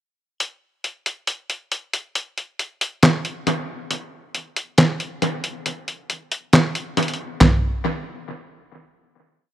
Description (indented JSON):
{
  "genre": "hip hop, trap",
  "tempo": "137 BPM",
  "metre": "4/4",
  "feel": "half-time",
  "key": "none",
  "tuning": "none",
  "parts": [
    { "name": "dusty soul sampler-style drum kit", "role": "drums", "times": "0.4-7.5 s", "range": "handclaps, hi-hat, snare drum, toms", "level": "-18 LUFS", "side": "equal", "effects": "analog delay" }
  ],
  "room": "light reverb",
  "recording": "echo-heavy mix",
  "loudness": "-20 LUFS",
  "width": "side -12 dB against mid",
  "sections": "0.4-7.4 breakdown; 7.4-9.5 final hit",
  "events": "kick muted 5.7-7.4",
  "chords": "none"
}